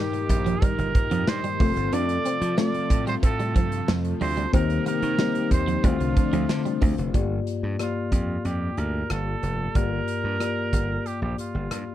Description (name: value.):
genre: 1980s-style pop.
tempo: 92 BPM.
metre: 4/4.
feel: straight.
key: G minor.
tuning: A4 = 442 Hz.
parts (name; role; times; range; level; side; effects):
clear trumpet; melody; 0.0-11.9 s; F4 to D5; -30 LUFS; right 4 dB; slapback echo.
mellow tine electric piano; accompaniment; 0.0-11.9 s; G2 to D5; -28 LUFS; moving between left 10 dB and left 3 dB; auto-pan.
warm analog pad; sustained chords; 0.0-7.1 s; Bb2 to A4; -33 LUFS; right 2 dB; chorus.
clean electric guitar; riff; 0.0-6.9 s; F3 to D4; -30 LUFS; right 3 dB; analog chorus, slapback echo.
modern studio drum kit; drums; 0.1-11.9 s; hi-hat, kick drum, rim click, snare drum, tambourine; -24 LUFS; equal; none.
slap bass; bass; 0.3-11.8 s; F1 to F3; -28 LUFS; right 1 dB; none.
cowbell; percussion; 0.6-7.0 s; none; -38 LUFS; right 12 dB; none.
room: little or no reverb.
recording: none.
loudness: -22 LUFS.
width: side -12 dB against mid.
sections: 0.0-7.1 A section; 7.1-11.9 B section.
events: none.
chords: 0.0 Eb; 1.6 F; 4.5 Cm7/Eb; 5.8 Dm7; 7.1 Gm7.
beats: 0.62 1.27 | 1.93 2.58 3.23 3.88 | 4.54 5.19 5.84 6.49 | 7.14 7.80 8.45 9.10 | 9.75 10.41 11.06 11.71.